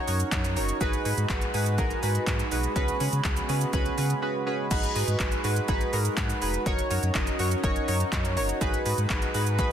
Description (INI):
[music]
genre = dance-pop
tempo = 123 BPM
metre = 4/4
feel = straight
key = G# minor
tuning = A4 = 439 Hz
[part]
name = chorused retro synth keys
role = accompaniment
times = 0.0-9.7 s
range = C#4 to D#5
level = -29 LUFS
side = right 1 dB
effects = sidechain pumping
[part]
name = chorused pulse-width pad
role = sustained chords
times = 0.0-9.7 s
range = C#3 to B4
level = -35 LUFS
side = right 1 dB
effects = sidechain pumping
[part]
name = sub bass with octave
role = bass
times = 0.1-9.7 s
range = E#1 to C#3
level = -28 LUFS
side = equal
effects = sidechain pumping
[part]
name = deep house drum kit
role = drums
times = 0.1-9.7 s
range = crash cymbal, handclaps, hi-hat, kick drum, shaker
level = -29 LUFS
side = equal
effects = none
[sound]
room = light reverb, digital ambience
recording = dense, heavily limited modern master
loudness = -24 LUFS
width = side -9 dB against mid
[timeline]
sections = 0.0-4.7 A section; 4.7-9.7 A section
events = break 4.2-4.7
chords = 0.0 D#m7/F#; 0.8 G#m7; 2.8 C#7sus4; 4.7 G#m7; 6.7 D#m7/F#; 8.6 G#m7